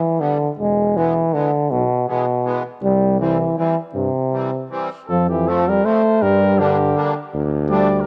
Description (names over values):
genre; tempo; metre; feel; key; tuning
alpine folk, alpine dance band; 160 BPM; 3/4; swing 54% on 8ths, rubato; C major; A4 = 440 Hz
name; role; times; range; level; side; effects
clear euphonium; melody; 0.0-8.1 s; B2 to A3; -19 LUFS; equal; none
musette accordion; accompaniment; 0.2-7.9 s; D3 to D4; -29 LUFS; equal; none
warm tuba; bass; 0.6-8.1 s; E1 to G2; -25 LUFS; equal; none
mellow trumpet; second line; 5.1-8.1 s; G4 to D5; -29 LUFS; equal; tape echo
room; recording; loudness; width
light reverb, small room ambience; none; -18 LUFS; mono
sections
0.0-5.1 A section; 5.1-8.1 B section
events
none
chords
0.0 G; 0.6 E; 2.8 C; 5.1 F; 6.2 Gm; 7.3 Dm